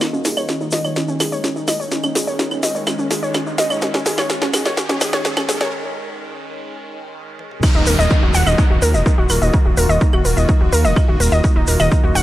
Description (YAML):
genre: melodic techno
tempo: 126 BPM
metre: 4/4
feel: straight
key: Eb minor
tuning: A4 = 440 Hz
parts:
  - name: evolving wavetable pad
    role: sustained chords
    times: 0.0-12.2 s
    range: Eb3 to Gb4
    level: -26 LUFS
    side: equal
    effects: phaser, built-in reverb, sidechain pumping
  - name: warbly dusty pluck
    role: arpeggios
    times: 0.0-12.2 s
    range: Db4 to Gb5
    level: -21 LUFS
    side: equal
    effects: chorus, sidechain pumping, tape echo
  - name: analog drone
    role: drone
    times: 0.0-5.7 s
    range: Eb3 to Eb4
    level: -34 LUFS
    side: left 1 dB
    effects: none
  - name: techno drum kit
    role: drums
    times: 0.0-12.2 s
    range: claves, crash cymbal, hi-hat, snare drum, toms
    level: -22 LUFS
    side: equal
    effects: overdrive, sidechain pumping on hats, sidechain pumping on perc, sidechain pumping on toms, sidechain pumping on cymbals
  - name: tube shaker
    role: percussion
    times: 0.0-12.2 s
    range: none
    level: -28 LUFS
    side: left 2 dB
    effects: none
  - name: riser and downlifter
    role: sound effects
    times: 1.8-11.4 s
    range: none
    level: -28 LUFS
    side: equal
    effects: none
  - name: fat analog bass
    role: bass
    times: 0.1-12.2 s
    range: Eb1 to Eb2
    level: -20 LUFS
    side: equal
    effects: sidechain pumping, high-pass filter
  - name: electronic kick drum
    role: drums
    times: 7.6-12.0 s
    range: none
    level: -15 LUFS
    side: equal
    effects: overdrive
room: little or no reverb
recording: dry, gritty hardware recording, high-pass filter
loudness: -14 LUFS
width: side -15 dB against mid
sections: 0.0-7.6 A section; 7.6-12.2 B section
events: build-up 0.0-7.6; drum fill 0.0-5.7, 7.4; filter sweep on synth arpeggio sound 0.0-7.6; filter sweep on ambient pad 0.0-7.6; riser 1.8-5.7; break 5.7-7.6; drop 7.6-12.2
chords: 0.0 Absus4/Eb; 7.6 Ebm